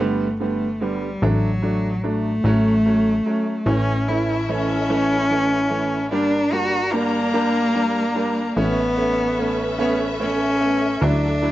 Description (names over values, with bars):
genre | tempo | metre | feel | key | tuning
six-eight pop ballad | 49 BPM (dotted quarters) | 6/8 | straight | unclear | A4 = 440 Hz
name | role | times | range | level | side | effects
rich cello | melody | 0.0-11.5 s | F#3 to F#4 | -20 LUFS | equal | slapback echo
clear upright piano | accompaniment | 0.0-11.5 s | D3 to E4 | -25 LUFS | right 2 dB | slapback echo
plucky analog bass | bass | 0.0-11.5 s | G1 to D2 | -25 LUFS | equal | none
warm symphonic string section | sustained chords | 3.7-11.5 s | G3 to Bb5 | -27 LUFS | left 1 dB | none
room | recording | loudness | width
little or no reverb | recorded outdoors, with no room sound, nothing above 7.7 kHz | -18 LUFS | side -15 dB against mid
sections
0.0-11.5 A section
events
none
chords
0.0 G; 1.2 D/A; 2.4 A6; 3.7 A; 6.1 Gm; 8.6 Aadd9; 11.0 Dadd9